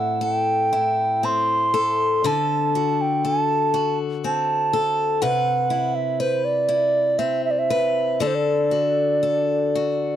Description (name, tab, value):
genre	celtic folk, Celtic slow air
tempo	54-62 BPM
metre	3/4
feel	rubato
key	D mixolydian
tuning	A4 = 440 Hz
part	baroque flute	melody	0.0-10.2 s	C5 to C6	-20 LUFS	right 3 dB	none
part	picked steel-string acoustic guitar	accompaniment	0.0-10.2 s	A2 to B4	-24 LUFS	left 7 dB	none
room	little or no reverb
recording	dry, close 1970s-style studio recording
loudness	-19 LUFS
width	side -10 dB against mid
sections	0.0-10.2 A section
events	none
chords	0.0 Am7; 2.2 D7; 5.2 Cmaj7; 8.2 D7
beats	0.21 1.23 | 2.25 3.25 4.23 | 5.21 6.18 7.19 | 8.20 9.22